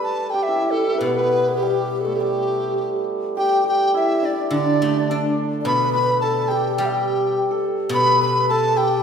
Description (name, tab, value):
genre	chinese traditional, Chinese chamber ensemble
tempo	105 BPM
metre	4/4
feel	straight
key	G gong mode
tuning	A4 = 440 Hz
part	mellow large dizi	melody	0.0-9.0 s	G4 to B5	-21 LUFS	equal	none
part	breathy mellow low xiao	second line	0.0-9.0 s	D4 to D5	-25 LUFS	left 2 dB	none
part	hammered dulcimer	second line	0.0-9.0 s	G3 to B4	-23 LUFS	right 2 dB	none
part	guzheng	accompaniment	0.0-9.0 s	B2 to D4	-25 LUFS	equal	none
room	wet scoring stage reverb, RT60 1.8 s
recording	recorded in a church or concert hall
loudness	-18 LUFS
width	side -7 dB against mid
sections	0.0-3.4 A section; 3.4-9.0 B section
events	none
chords	none